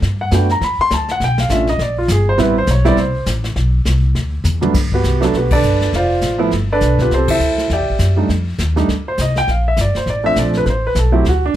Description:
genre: jazz piano trio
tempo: 203 BPM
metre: 4/4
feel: swing 60% on 8ths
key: G major from 4.7 s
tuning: A4 = 440 Hz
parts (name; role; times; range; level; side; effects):
- upright bass; bass; 0.0-11.5 s; F1 to G2; -17 LUFS; equal; none
- jazz brush drum kit; drums; 0.0-11.6 s; brushed snare drum, crash cymbal, hi-hat, kick drum, ride cymbal, snare drum, toms; -23 LUFS; left 2 dB; none
- warm concert grand piano; melody; 0.2-11.5 s; G2 to C6; -16 LUFS; right 2 dB; none
room: light reverb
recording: close, detailed microphones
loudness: -13 LUFS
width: side -12 dB against mid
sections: 0.0-4.7 A section; 4.7-11.6 B section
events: drum fill 4.4; band accent 5.5, 7.3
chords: 0.0 Gmaj7; 1.2 Bm7b5; 1.8 Gm; 2.4 Am7; 3.6 N.C.; 4.2 Dsus2; 4.7 Gmaj9; 5.9 Dm7; 6.5 Gadd9; 7.1 C69; 8.3 F7(no3); 9.5 Bbmaj7; 10.7 Amadd9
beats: | 0.02 0.32 0.61 0.91 | 1.20 1.50 1.79 2.08 | 2.38 2.67 2.97 3.27 | 3.56 3.86 4.15 4.45 | 4.74 5.04 5.33 5.63 | 5.92 6.22 6.51 6.81 | 7.11 7.40 7.70 7.99 | 8.29 8.59 8.88 9.18 | 9.47 9.77 10.06 10.36 | 10.65 10.95 11.24 11.54

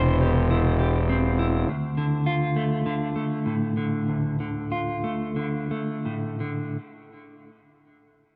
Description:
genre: rock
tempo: 82-103 BPM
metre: 4/4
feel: straight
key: D minor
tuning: A4 = 440 Hz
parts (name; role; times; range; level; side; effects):
- clean electric guitar; arpeggios; 0.0-6.8 s; D2 to C5; -28 LUFS; equal; harmonic tremolo, digital delay
- fuzz fingered electric bass; bass; 0.0-1.6 s; E1; -24 LUFS; equal; overdrive
room: light reverb, small room ambience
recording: none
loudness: -25 LUFS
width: mono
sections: 0.0-6.8 A section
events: slowing down 1.7-6.8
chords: 0.0 C/E; 1.7 Dm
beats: 0.50 1.09 | 1.67 2.26 2.85 3.45 | 4.07 4.71 5.36 6.05

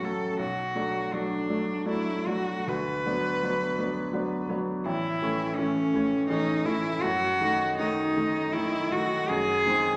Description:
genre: classical, romantic duo for cello and grand piano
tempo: 81 BPM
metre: 3/4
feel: uneven beats, rubato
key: unclear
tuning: A4 = 441 Hz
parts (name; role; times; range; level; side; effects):
- rich cello; melody; 0.0-10.0 s; C#4 to B4; -30 LUFS; equal; none
- bright baby grand piano; accompaniment; 0.0-10.0 s; A1 to D#4; -31 LUFS; equal; none
room: wet recital hall reverb, RT60 1.6 s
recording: none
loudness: -28 LUFS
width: mono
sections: 0.0-10.0 A section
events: none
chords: 0.4 Bm7; 2.7 Bm/D; 4.9 A; 7.0 D#dim/F#; 9.3 G#7/F#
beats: | 0.40 1.14 1.88 | 2.69 3.44 4.15 | 4.86 5.58 6.29 | 7.03 7.79 8.53 | 9.29

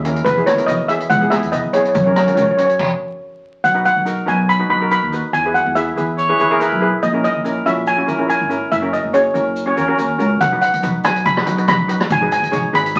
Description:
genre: calypso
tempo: 142 BPM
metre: 4/4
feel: swing 54% on 16ths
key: B major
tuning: A4 = 440 Hz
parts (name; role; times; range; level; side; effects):
- steel pan; melody; 0.0-13.0 s; B4 to B5; -19 LUFS; equal; none
- steel pan; accompaniment; 0.0-12.9 s; B3 to C#5; -23 LUFS; equal; none
- upright bass; bass; 0.0-13.0 s; F#1 to F#2; -25 LUFS; equal; none
- street-band drum kit; drums; 0.0-2.9, 10.4-13.0 s; crash cymbal, hi-hat, kick drum, rim click; -24 LUFS; equal; none
- tube shaker; percussion; 0.0-13.0 s; none; -44 LUFS; equal; none
- clear trumpet; second line; 6.2-6.9 s; B4 to C#5; -20 LUFS; equal; none
room: wet studio reverb, RT60 0.6 s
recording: very old 78 rpm record, vinyl crackle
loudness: -17 LUFS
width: mono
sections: 0.0-3.6 A section; 3.6-13.0 B section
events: steel pan solo 0.0-3.6; stop 2.8-3.6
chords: 0.3 E; 2.0 F#; 3.6 B; 5.3 E; 7.0 A#m7b5; 8.7 F#; 10.4 B; 12.1 G#m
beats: | 0.26 0.68 1.10 1.53 | 1.95 2.38 2.80 3.22 | 3.65 4.07 4.49 4.91 | 5.34 5.76 6.18 6.61 | 7.03 7.45 7.87 8.30 | 8.72 9.14 9.57 9.99 | 10.41 10.84 11.26 11.69 | 12.11 12.53 12.96

